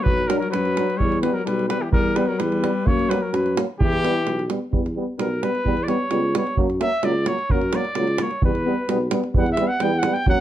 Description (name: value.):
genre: balkan folk, Balkan brass band.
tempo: 129 BPM.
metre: 2/4.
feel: straight.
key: E dorian sharp4.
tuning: A4 = 442 Hz.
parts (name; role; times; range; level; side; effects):
warm trumpet; melody; 0.0-10.4 s; G4 to G5; -25 LUFS; equal; plate reverb.
clear alto saxophone; second line; 0.0-4.5 s; E3 to A#3; -26 LUFS; left 5 dB; none.
mellow tuba; bass; 0.1-10.4 s; B1 to F#2; -25 LUFS; equal; none.
davul; percussion; 0.1-10.4 s; none; -24 LUFS; right 2 dB; none.
clear euphonium; accompaniment; 0.3-10.4 s; F#3 to G3; -28 LUFS; right 7 dB; none.
mellow trombone; accompaniment; 0.3-10.4 s; A#3 to D4; -28 LUFS; left 5 dB; none.
room: moderate studio reverb, RT60 0.5 s.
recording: dark, warm production.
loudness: -19 LUFS.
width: side -12 dB against mid.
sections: 0.0-4.7 A section; 4.7-10.4 B section.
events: trumpet solo 4.7-10.4.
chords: 0.0 Bm; 1.0 Em; 2.9 F#; 3.8 Em; 6.6 F#; 8.4 Em.